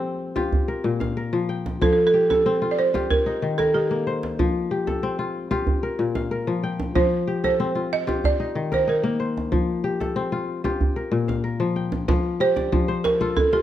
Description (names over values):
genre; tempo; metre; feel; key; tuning
west african traditional, West African string and xylophone music; 94 BPM; 4/4; straight; F mixolydian; A4 = 441 Hz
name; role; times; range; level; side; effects
kora; arpeggios; 0.0-13.6 s; Bb2 to G5; -24 LUFS; left 4 dB; none
djembe; percussion; 0.4-13.6 s; none; -25 LUFS; right 2 dB; none
balafon; melody; 1.8-13.6 s; G4 to Eb5; -21 LUFS; right 3 dB; none
room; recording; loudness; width
moderate recital hall reverb, RT60 1.5 s; none; -20 LUFS; side -12 dB against mid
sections
0.0-12.1 A section; 12.1-13.6 B section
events
balafon solo 12.1-13.6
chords
0.0 F; 0.5 Bb5; 1.8 F; 3.1 Eb; 4.4 F; 5.7 Bb5; 6.9 F; 8.2 Eb; 9.5 F; 10.8 Bb5; 12.1 F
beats
0.52 1.16 | 1.81 2.45 3.10 3.74 | 4.38 5.02 5.67 6.31 | 6.95 7.59 8.23 8.87 | 9.52 10.16 10.80 11.44 | 12.08 12.72 13.36